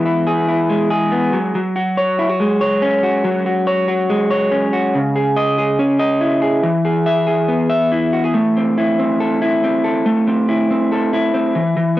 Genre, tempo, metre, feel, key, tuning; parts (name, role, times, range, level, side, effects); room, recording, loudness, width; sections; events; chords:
indie pop; 141 BPM; 4/4; straight; A4 = 442 Hz
electric guitar through a small old amp; solo; 0.0-12.0 s; C#3 to E5; -14 LUFS; equal; cassette tape
light reverb; home recording on cassette; -14 LUFS; side -15 dB against mid
0.0-8.3 A section; 8.3-12.0 B section
0.0 E; 1.3 F#sus2; 4.9 C#madd9; 6.6 E; 8.3 Am